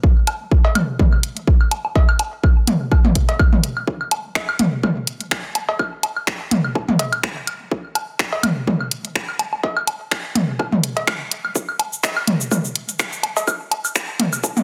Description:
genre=techno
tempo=125 BPM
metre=4/4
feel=swing 55% on 16ths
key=none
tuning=none
part: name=electronic kick drum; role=drums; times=0.0-14.5 s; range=none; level=-19 LUFS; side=equal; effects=overdrive, high-pass filter on kick, high-pass filter on room
part: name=house drum kit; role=drums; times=0.3-14.6 s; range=cabasa, finger snaps, hi-hat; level=-25 LUFS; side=equal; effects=overdrive
part: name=electronic woodblock, cowbell and toms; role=percussion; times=0.3-14.6 s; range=none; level=-23 LUFS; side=equal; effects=digital delay
room=light reverb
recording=high-pass filter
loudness=-20 LUFS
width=mono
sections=0.0-3.9 A section; 3.9-14.6 B section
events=build-up 3.9-14.6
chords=none

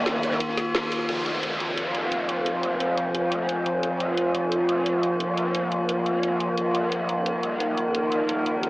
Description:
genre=dark technical drum and bass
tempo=175 BPM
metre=4/4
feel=straight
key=F minor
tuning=A4 = 440 Hz
part: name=metallic inharmonic drone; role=sustained chords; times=0.0-8.7 s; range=Eb3 to F4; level=-27 LUFS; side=equal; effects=chorus, built-in reverb
part: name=growl bass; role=bass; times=0.0-8.7 s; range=Eb1 to F1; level=-28 LUFS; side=equal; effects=chorus, overdrive
part: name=breakbeat sampler-style drum kit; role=drums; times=0.1-1.0 s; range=ride cymbal, snare drum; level=-37 LUFS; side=equal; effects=none
part: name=drum and bass drum kit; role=drums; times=0.1-8.7 s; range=cabasa, hi-hat, ride cymbal, snare drum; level=-30 LUFS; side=equal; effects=none
part: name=downlifter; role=sound effects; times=1.1-3.8 s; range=none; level=-34 LUFS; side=equal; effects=none
part: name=warbly tape-like pad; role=texture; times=2.4-8.7 s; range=Eb4 to Ab5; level=-28 LUFS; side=equal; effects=chorus, built-in reverb, phaser
room=wet huge ambient reverb, RT60 6.8 s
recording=dreamy mix soaked in reverb, AM radio sound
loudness=-22 LUFS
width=side -21 dB against mid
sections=0.0-1.1 A section; 1.1-8.7 B section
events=drop 0.0-1.1; band accent 0.7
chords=0.0 Eb5; 1.1 Fm; 6.6 Eb5

